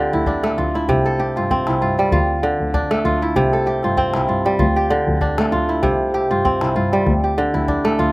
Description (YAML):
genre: west african traditional, West African string and xylophone music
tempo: 97 BPM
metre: 4/4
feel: swing 55% on 16ths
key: unclear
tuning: A4 = 440 Hz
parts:
  - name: kora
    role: arpeggios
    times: 0.0-8.1 s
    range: C3 to A4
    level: -17 LUFS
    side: right 1 dB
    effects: slapback echo
  - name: dark double bass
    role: bass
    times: 0.1-8.1 s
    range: C2 to G2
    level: -23 LUFS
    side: left 1 dB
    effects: none
  - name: calabash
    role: percussion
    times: 0.3-8.1 s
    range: none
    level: -27 LUFS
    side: left 2 dB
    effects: none
room: little or no reverb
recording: recorded outdoors, with no room sound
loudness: -16 LUFS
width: side -22 dB against mid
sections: 0.0-8.1 A section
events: none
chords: 0.0 Dm; 0.9 C; 2.1 Dm; 3.4 C; 4.6 Dm; 5.8 C; 7.1 Dm